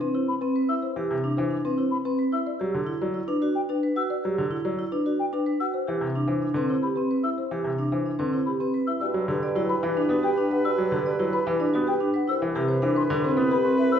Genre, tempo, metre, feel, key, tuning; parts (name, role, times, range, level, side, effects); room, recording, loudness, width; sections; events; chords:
classical, minimalist pattern music; 110 BPM; 3/4; straight; G major; A4 = 444 Hz
folk marimba with soft mallets; melody; 0.0-14.0 s; G4 to F#5; -32 LUFS; left 10 dB
vibraphone with medium hard mallets; arpeggios; 0.0-14.0 s; C4 to D5; -25 LUFS; right 2 dB
mellow hollow silver concert flute; arpeggios; 0.3-14.0 s; G5 to E6; -32 LUFS; left 4 dB
bright baby grand piano; accompaniment; 1.0-13.5 s; C3 to B3; -29 LUFS; left 1 dB
clear soprano saxophone; second line; 9.0-14.0 s; B4; -30 LUFS; equal
mellow bassoon; bass; 9.0-14.0 s; C2 to G2; -31 LUFS; equal
wet recital hall reverb, RT60 1.5 s; recorded in a church or concert hall; -23 LUFS; side -8 dB against mid
0.0-9.0 A section; 9.0-14.0 A section
0.0 Cmaj7; 2.5 Gmaj7; 5.7 Cmaj7; 9.0 Gmaj7; 12.3 Cmaj7